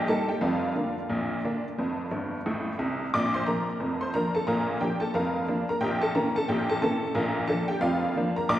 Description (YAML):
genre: ragtime piano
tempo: 89 BPM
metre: 2/4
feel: swing 60% on 16ths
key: Bb major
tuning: A4 = 441 Hz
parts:
  - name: honky-tonk upright piano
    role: solo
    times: 0.0-8.6 s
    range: F1 to D6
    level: -25 LUFS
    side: equal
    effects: none
room: wet concert hall reverb, RT60 2.4 s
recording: heard from further back in the room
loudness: -25 LUFS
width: side -12 dB against mid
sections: 0.0-8.6 A section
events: honky-tonk piano fill 2.1-3.1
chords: 0.4 Bb/F; 1.8 F; 3.1 Bb; 5.8 Bbdim7; 7.2 Bb